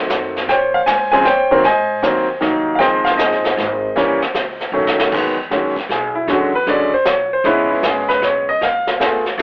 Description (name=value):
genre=jazz piano trio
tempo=155 BPM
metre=3/4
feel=swing 66% on 8ths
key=Ab major, E major from 5.1 s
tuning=A4 = 444 Hz
part: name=clear grand piano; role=melody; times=0.0-9.4 s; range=Db3 to Ab5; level=-17 LUFS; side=equal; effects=none
part: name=upright bass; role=bass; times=0.0-9.4 s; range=Ab1 to Bb2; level=-35 LUFS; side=equal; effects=none
part: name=vintage brush drum kit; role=drums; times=0.1-9.4 s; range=brushed snare drum, crash cymbal, hi-hat, kick drum, snare drum, toms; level=-24 LUFS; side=equal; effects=none
room=moderate studio reverb, RT60 0.6 s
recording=worn, warbling old tape, cassette tape, warbly pitch drift, telephone sound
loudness=-16 LUFS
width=mono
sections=0.0-5.1 A section; 5.1-9.4 B section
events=drum fill 4.7-5.1; grand piano solo 5.1-9.4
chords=0.5 Bbm9; 1.6 Ab9; 2.8 Dbmaj9; 4.0 Eb7b9; 4.7 B7; 5.1 Emaj7; 7.4 Amaj9; 8.6 C#7b13